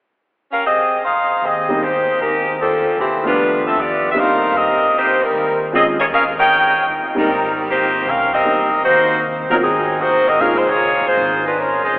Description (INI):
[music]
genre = jazz, big band swing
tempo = 154 BPM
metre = 4/4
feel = swing 67% on 8ths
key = Ab major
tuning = A4 = 440 Hz
[part]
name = clear saxophone section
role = melody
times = 0.5-12.0 s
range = Fb3 to G5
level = -14 LUFS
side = equal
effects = none
[part]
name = upright bass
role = bass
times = 1.4-12.0 s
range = Ab1 to F2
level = -34 LUFS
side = equal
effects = none
[part]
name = clear baby grand piano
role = accompaniment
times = 1.7-10.6 s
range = Ab2 to F4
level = -24 LUFS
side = equal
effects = none
[sound]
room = wet cathedral reverb, RT60 7.5 s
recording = recorded in a church or concert hall, telephone sound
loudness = -14 LUFS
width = side -22 dB against mid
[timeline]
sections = 0.0-1.0 A section; 1.0-7.3 B section; 7.3-12.0 C section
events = none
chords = 0.0 Abmaj7; 2.6 Dm7; 4.1 Cm7; 5.7 Bbm7; 6.5 Eb7; 7.3 Abmaj9; 8.8 Ebm; 9.6 Ab9; 10.4 Db6